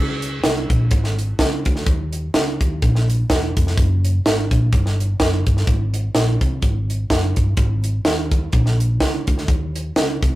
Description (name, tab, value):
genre	uptempo gospel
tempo	126 BPM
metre	4/4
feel	swing 56% on 8ths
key	Db major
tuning	A4 = 440 Hz
part	hollow-body short-scale fingered electric bass	bass	0.0-10.4 s	Fb1 to Eb2	-20 LUFS	equal	none
part	crisp fusion drum kit	drums	0.2-10.3 s	hi-hat, kick drum, snare drum	-18 LUFS	equal	none
room	moderate studio reverb, RT60 0.5 s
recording	rough rehearsal-room recording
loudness	-16 LUFS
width	side -17 dB against mid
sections	0.0-10.4 A section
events	none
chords	none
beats	0.44 0.91 1.39 | 1.87 2.34 2.82 3.29 | 3.77 4.25 4.72 5.20 | 5.67 6.15 6.62 7.10 | 7.58 8.05 8.53 9.01 | 9.48 9.96